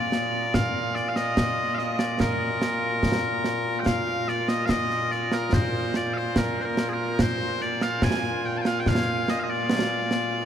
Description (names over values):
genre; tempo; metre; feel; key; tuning
scottish traditional, Scottish pipe music; 72 BPM; 2/4; straight; Bb major; A4 = 441 Hz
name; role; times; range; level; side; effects
loud bright bagpipes; melody; 0.0-10.5 s; Bb2 to A5; -25 LUFS; equal; none
concert snare drum and concert bass drum; drums; 0.1-10.3 s; none; -26 LUFS; right 1 dB; none
room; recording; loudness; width
wet huge ambient reverb, RT60 7.2 s; in a vast, echoing space; -22 LUFS; side -9 dB against mid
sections
0.0-3.9 A section; 3.9-10.5 A section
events
none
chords
none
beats
| 0.53 1.36 | 2.19 3.03 | 3.86 4.70 | 5.53 6.36 | 7.20 8.03 | 8.86 9.70